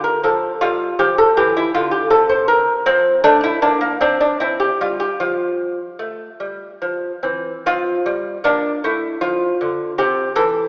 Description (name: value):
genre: classical, baroque-style dance for lute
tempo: 69-80 BPM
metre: 3/4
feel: rubato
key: F major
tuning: A4 = 443 Hz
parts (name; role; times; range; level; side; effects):
- lute; solo; 0.0-10.7 s; C3 to C5; -15 LUFS; equal; none
room: moderate concert hall reverb, RT60 2.1 s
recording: recorded in a church or concert hall, AM radio sound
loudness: -15 LUFS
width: side -39 dB against mid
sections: 0.0-7.7 A section; 7.7-10.7 B section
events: none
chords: 0.0 Dm; 0.6 G5; 2.1 N.C.; 2.9 F; 3.6 Bb; 4.4 C5; 5.2 F5; 7.7 F; 10.0 C